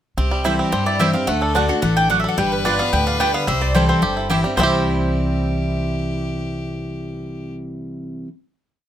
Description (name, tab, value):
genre	bluegrass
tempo	218 BPM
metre	4/4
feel	straight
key	C major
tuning	A4 = 440 Hz
part	clear fiddle	second line	0.2-7.5 s	G4 to C5	-28 LUFS	left 5 dB	none
part	picked steel-string acoustic guitar	accompaniment	0.2-8.3 s	G2 to F#4	-22 LUFS	left 1 dB	none
part	bluegrass banjo	arpeggios	0.2-8.3 s	D3 to G4	-24 LUFS	right 3 dB	none
part	upright bass	bass	0.2-8.2 s	G1 to G2	-25 LUFS	equal	none
part	mandolin	stabs	0.4-8.3 s	A3 to G5	-25 LUFS	right 6 dB	none
part	mandolin	melody	0.7-8.2 s	A4 to G5	-22 LUFS	left 1 dB	none
room	light reverb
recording	close, detailed microphones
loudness	-17 LUFS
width	side -10 dB against mid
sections	0.2-4.6 A section; 4.6-6.8 final chord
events	none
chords	0.2 C; 1.3 D; 2.4 G7; 3.5 C